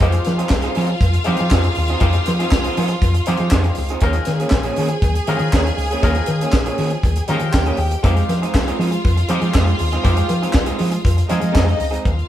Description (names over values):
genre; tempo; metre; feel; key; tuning
disco; 120 BPM; 4/4; straight; F minor; A4 = 440 Hz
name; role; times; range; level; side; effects
clear studio string section; second line; 0.0-12.3 s; Eb4 to Ab5; -24 LUFS; left 1 dB; none
bright clav; accompaniment; 0.0-12.0 s; G3 to Bb4; -27 LUFS; left 4 dB; auto-wah
electric guitar through a small old amp; accompaniment; 0.0-12.1 s; F3 to Ab4; -25 LUFS; right 3 dB; none
hollow-body short-scale fingered electric bass; bass; 0.0-12.2 s; Bb1 to F3; -19 LUFS; equal; none
tight funk drum kit; drums; 0.0-12.3 s; handclaps, hi-hat, kick drum, snare drum; -20 LUFS; equal; none
cowbell; percussion; 0.0-12.2 s; none; -33 LUFS; left 5 dB; none
room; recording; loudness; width
moderate studio reverb, RT60 0.9 s; band playing live in one room; -15 LUFS; side -12 dB against mid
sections
0.0-12.1 A section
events
none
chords
0.0 Fm7; 4.0 Eb9sus4; 8.0 Fm7